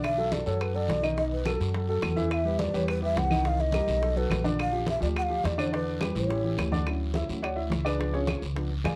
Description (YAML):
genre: Afro-Cuban jazz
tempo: 211 BPM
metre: 4/4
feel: straight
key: unclear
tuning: A4 = 444 Hz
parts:
  - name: breathy mellow long shakuhachi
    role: melody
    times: 0.0-6.7 s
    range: A4 to F#5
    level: -32 LUFS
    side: equal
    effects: none
  - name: dark upright piano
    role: accompaniment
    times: 0.0-9.0 s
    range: D3 to G#5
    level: -33 LUFS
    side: equal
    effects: none
  - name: upright bass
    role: bass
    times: 0.0-9.0 s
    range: A1 to F#2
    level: -32 LUFS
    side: equal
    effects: none
  - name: bongos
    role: percussion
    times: 0.0-9.0 s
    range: none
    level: -40 LUFS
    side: equal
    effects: none
  - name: claves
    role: percussion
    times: 0.0-9.0 s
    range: none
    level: -40 LUFS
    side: equal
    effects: none
  - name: congas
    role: percussion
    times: 0.0-9.0 s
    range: none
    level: -38 LUFS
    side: equal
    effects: none
  - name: guiro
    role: percussion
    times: 0.0-9.0 s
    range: none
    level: -48 LUFS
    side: equal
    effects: none
room: light reverb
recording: worn, warbling old tape, cassette tape, warbly pitch drift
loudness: -28 LUFS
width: mono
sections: 0.0-6.9 A section; 6.9-9.0 B section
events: upright piano solo 6.9-9.0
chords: 0.0 Bm7; 1.2 B7; 2.3 Emadd9; 3.5 Cm7; 4.0 B5; 4.6 Bb6; 5.7 Em7; 6.3 A7; 6.9 Dmaj7; 8.0 C#7b9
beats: | 0.04 0.32 0.61 0.89 | 1.18 1.46 1.75 2.03 | 2.31 2.60 2.88 3.17 | 3.45 3.74 4.02 4.31 | 4.59 4.88 5.16 5.45 | 5.73 6.01 6.30 6.58 | 6.87 7.15 7.43 7.72 | 8.00 8.29 8.57 8.85